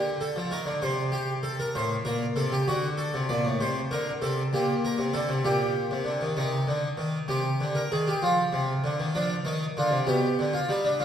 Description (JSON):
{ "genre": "classical, baroque-style two-part invention for harpsichord", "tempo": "65 BPM (dotted quarters)", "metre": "12/8", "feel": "straight", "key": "C minor", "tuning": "A4 = 444 Hz", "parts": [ { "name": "harpsichord", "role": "solo", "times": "0.0-11.0 s", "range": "A2 to D5", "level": "-25 LUFS", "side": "equal", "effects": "none" } ], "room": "wet recital hall reverb, RT60 1.7 s", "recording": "heard from further back in the room", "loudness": "-25 LUFS", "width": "side -9 dB against mid", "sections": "0.0-11.0 A section", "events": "none", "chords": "0.0 Gm; 0.8 Am7; 2.7 D7; 4.5 Gm/Bb; 6.4 Cm; 8.2 Cmadd11; 10.1 G7/B" }